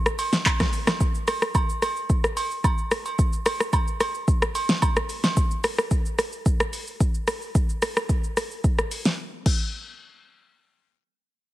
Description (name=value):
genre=amapiano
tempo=110 BPM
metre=4/4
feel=straight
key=none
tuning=none
part: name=deep house drum kit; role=drums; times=0.1-9.6 s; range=crash cymbal, handclaps, hi-hat, kick drum, rim click, shaker, snare drum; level=-22 LUFS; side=equal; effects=vintage 12-bit sampler grit
part: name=agogo bells and woodblock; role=percussion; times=0.2-5.4 s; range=none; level=-28 LUFS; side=right 3 dB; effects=none
room=digital ambience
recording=heavily compressed radio sound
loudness=-22 LUFS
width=side -15 dB against mid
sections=0.0-9.7 A section; 9.7-11.5 B section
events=drop 0.0-9.7; break 9.2-9.7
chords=none